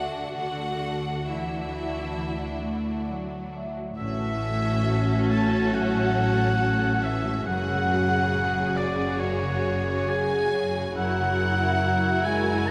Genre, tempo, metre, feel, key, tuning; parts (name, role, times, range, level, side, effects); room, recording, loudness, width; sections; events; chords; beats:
cinematic, emotional film score for orchestra; 68 BPM; 4/4; uneven beats, rubato; A major; A4 = 440 Hz
rich studio violin section; melody; 0.0-12.7 s; G#4 to F#5; -40 LUFS; equal
rich studio violin section; second line; 0.0-12.7 s; D4 to A5; -35 LUFS; equal
rich studio viola section; accompaniment; 0.0-12.7 s; C#3 to F#4; -33 LUFS; equal
concert harp; arpeggios; 0.0-12.7 s; F#2 to C#6; -36 LUFS; equal
rich studio cello section; bass; 0.0-12.7 s; F#2 to A3; -34 LUFS; equal
warm studio double bass section; bass; 0.0-12.7 s; F#1 to D2; -33 LUFS; equal
warm oboe; second line; 4.0-12.7 s; C#5 to A#5; -31 LUFS; equal
dark French horn section; sustained chords; 4.0-12.7 s; C#3 to G#4; -33 LUFS; equal
wet cathedral reverb, RT60 6.4 s; in a vast, echoing space; -25 LUFS; mono
0.0-4.0 A section; 4.0-12.7 A section
0.0 Dadd9; 4.0 A6; 7.5 F#sus2; 11.0 F#7
| 0.37 1.28 2.18 3.09 | 3.99 4.87 5.74 6.61 | 7.47 8.34 9.20 10.09 | 10.96 11.82 12.68